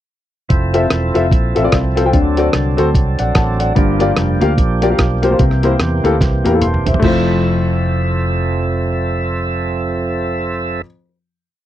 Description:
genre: uptempo gospel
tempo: 147 BPM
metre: 4/4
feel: swing 60% on 8ths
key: F major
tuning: A4 = 440 Hz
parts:
  - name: percussive tonewheel organ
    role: sustained chords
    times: 0.5-10.8 s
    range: E3 to E5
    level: -21 LUFS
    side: right 3 dB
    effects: fast rotary speaker, overdrive
  - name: fingered electric bass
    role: bass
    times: 0.5-10.8 s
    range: E1 to E2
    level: -18 LUFS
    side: equal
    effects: none
  - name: lo-fi sampler-style drum kit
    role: drums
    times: 0.5-7.1 s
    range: crash cymbal, hi-hat, kick drum, rim click, snare drum, toms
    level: -16 LUFS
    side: equal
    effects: none
  - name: clear baby grand piano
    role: accompaniment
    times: 0.7-10.8 s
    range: F2 to C6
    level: -16 LUFS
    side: left 3 dB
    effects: none
room: little or no reverb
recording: dry, close 1970s-style studio recording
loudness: -13 LUFS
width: side -12 dB against mid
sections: 0.5-7.0 breakdown; 7.0-10.3 final chord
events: drum fill 6.2-7.0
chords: 0.5 Fmaj7; 2.1 D7; 3.8 Gm7; 5.4 C7; 7.0 Fmaj7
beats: | 0.51 0.91 1.32 1.73 | 2.14 2.54 2.95 3.36 | 3.77 4.17 4.58 4.99 | 5.40 5.80 6.21 6.62 | 7.03 7.44 7.84 8.25 | 8.66 9.07 9.48 9.89

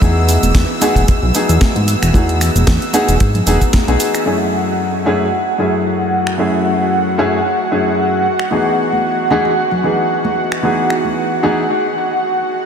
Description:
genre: nu-disco, nu disco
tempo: 113 BPM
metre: 4/4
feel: swing 55% on 16ths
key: F# dorian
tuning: A4 = 440 Hz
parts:
  - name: warm grand piano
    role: accompaniment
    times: 0.0-11.6 s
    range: F#2 to G#4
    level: -16 LUFS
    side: left 1 dB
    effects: lush chorus, sidechain pumping, ping-pong delay
  - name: lush unison pad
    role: sustained chords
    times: 0.0-12.7 s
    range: E3 to E6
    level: -19 LUFS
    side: right 1 dB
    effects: chorus, sidechain pumping
  - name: fat analog bass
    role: bass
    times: 0.0-4.0 s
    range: E1 to G#2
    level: -14 LUFS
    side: equal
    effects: tube saturation
  - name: house drum kit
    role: drums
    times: 0.0-11.0 s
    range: cabasa, finger snaps, hi-hat, snare drum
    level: -23 LUFS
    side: right 1 dB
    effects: none
  - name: kick drum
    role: drums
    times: 0.0-3.9 s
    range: none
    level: -14 LUFS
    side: equal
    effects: none
  - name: congas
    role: percussion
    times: 0.0-4.0, 8.5-11.6 s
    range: none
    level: -26 LUFS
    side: right 3 dB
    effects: none
room: moderate huge ambient reverb, RT60 6.8 s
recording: dreamy mix soaked in reverb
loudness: -12 LUFS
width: side -7 dB against mid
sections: 0.0-4.3 A section; 4.3-12.7 B section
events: filter sweep on analog synth pad 4.3-12.7; break 11.7-12.7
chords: 0.0 Emaj9; 4.3 F#m7; 8.2 Emaj9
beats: | 0.02 0.55 1.08 1.61 | 2.14 2.67 3.20 3.73 | 4.26 4.79 5.33 5.86 | 6.39 6.92 7.45 7.98 | 8.51 9.04 9.57 10.10 | 10.63 11.17 11.70 12.23

